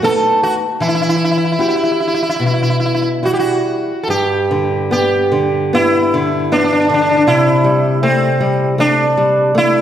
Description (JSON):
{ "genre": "fado-style ballad", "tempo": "70-80 BPM", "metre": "4/4", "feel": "rubato", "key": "E harmonic minor, G major from 4.1 s", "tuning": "A4 = 443 Hz", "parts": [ { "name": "sitar", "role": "melody", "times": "0.0-9.8 s", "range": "C4 to A4", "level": "-14 LUFS", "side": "right 1 dB", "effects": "none" }, { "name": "nylon-string guitar", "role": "accompaniment", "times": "0.0-9.8 s", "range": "G2 to G4", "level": "-16 LUFS", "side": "left 1 dB", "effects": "none" } ], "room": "wet recital hall reverb, RT60 1.4 s", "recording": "heard from further back in the room", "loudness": "-12 LUFS", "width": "side -10 dB against mid", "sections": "0.0-4.1 A section; 4.1-9.8 B section", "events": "none", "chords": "0.0 B7; 0.8 Emadd9; 4.1 G; 7.3 C6" }